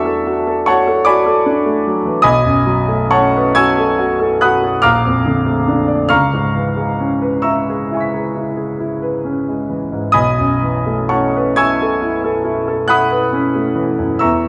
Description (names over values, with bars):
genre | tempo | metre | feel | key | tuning
classical, impressionist solo piano | 45 BPM (dotted quarters) | 9/8 | uneven beats, rubato | unclear | A4 = 440 Hz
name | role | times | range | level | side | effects
clear grand piano | solo | 0.0-14.5 s | A#1 to B6 | -15 LUFS | equal | none
room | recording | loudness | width
moderate recital hall reverb, RT60 1.4 s | dark, warm production | -15 LUFS | mono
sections
0.0-14.5 A section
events
none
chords
0.0 Dadd9/E; 2.2 B9; 4.8 A#maj7; 6.1 C#m7; 10.1 B9sus4